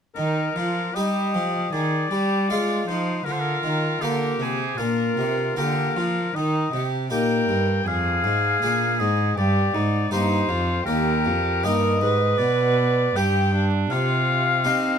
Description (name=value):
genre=classical, baroque-style sonata movement with continuo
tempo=79 BPM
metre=4/4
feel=rubato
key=Eb major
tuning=A4 = 439 Hz
part: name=warm oboe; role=melody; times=0.1-15.0 s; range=F4 to G5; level=-26 LUFS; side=left 8 dB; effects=none
part: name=dark violin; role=second line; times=0.2-15.0 s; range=D4 to Cb5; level=-26 LUFS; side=right 4 dB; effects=none
part: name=harpsichord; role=accompaniment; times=0.2-15.0 s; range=Eb2 to Ab4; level=-28 LUFS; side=left 3 dB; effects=none
part: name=rich cello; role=bass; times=0.2-15.0 s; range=Eb2 to C4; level=-24 LUFS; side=right 2 dB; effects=none
room=light reverb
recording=close, detailed microphones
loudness=-20 LUFS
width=side -7 dB against mid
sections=0.2-15.0 A section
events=none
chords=0.2 Eb; 1.7 Fm7/Eb; 3.3 Bb; 6.4 Eb; 7.9 Bb7/F; 9.4 Eb; 12.4 G/B; 13.9 Cm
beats=| 0.17 0.96 1.73 2.50 | 3.27 4.02 4.79 5.57 | 6.36 7.12 7.87 8.63 | 9.38 10.12 10.87 11.64 | 12.39 13.16 13.91 14.66